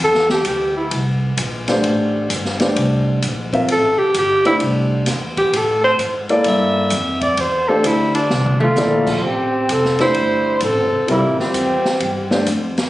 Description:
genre	modal jazz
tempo	130 BPM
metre	4/4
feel	swing 66% on 8ths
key	A phrygian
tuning	A4 = 438 Hz
part	breathy alto saxophone	second line	0.0-0.9, 3.7-12.3 s	G3 to E5	-17 LUFS	equal	none
part	upright bass	bass	0.0-12.9 s	E1 to A2	-23 LUFS	equal	none
part	open jazz drum kit	drums	0.1-12.9 s	crash cymbal, hi-hat, kick drum, ride cymbal, snare drum, toms	-24 LUFS	left 1 dB	none
part	warm concert grand piano	accompaniment	1.7-12.5 s	G3 to E5	-19 LUFS	left 1 dB	none
part	breathy trumpet	melody	8.6-12.3 s	E4 to C5	-19 LUFS	equal	none
room	moderate large studio reverb, RT60 1.1 s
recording	recorded on a phone in the room, club reverb, nothing above 10.5 kHz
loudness	-15 LUFS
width	side -16 dB against mid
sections	0.0-9.2 A section; 9.2-12.9 B section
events	alto saxophone solo 0.0-9.2; drum fill 8.3-8.8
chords	0.0 Am7

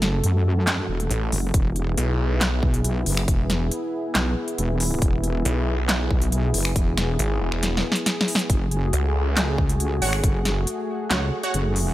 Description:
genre	heavy wobble dubstep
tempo	138 BPM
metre	4/4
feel	half-time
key	unclear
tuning	A4 = 439 Hz
part	supersaw pad	sustained chords	0.0-11.9 s	A3 to A4	-28 LUFS	equal	sidechain pumping, low-pass filter
part	wobble bass	bass	0.0-11.9 s	E1 to F#2	-23 LUFS	equal	chorus, overdrive
part	big-room dance drum kit	drums	0.0-11.8 s	finger snaps, handclaps, hi-hat, snare drum	-25 LUFS	equal	overdrive
part	snarling distorted saw bass	bass	1.1-2.6, 5.5-9.6 s	E1 to C#2	-23 LUFS	equal	distortion, overdrive
part	electronic kick drum	drums	1.5-10.3 s	none	-22 LUFS	equal	none
part	orchestra-hit-like synth stab	stabs	10.0-11.5 s	F#4 to F#5	-29 LUFS	right 2 dB	built-in reverb, dub echo
room	little or no reverb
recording	none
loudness	-20 LUFS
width	side -15 dB against mid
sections	0.0-11.9 A section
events	drum fill 7.6-8.5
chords	0.0 F#m; 1.5 E; 8.5 F#madd9

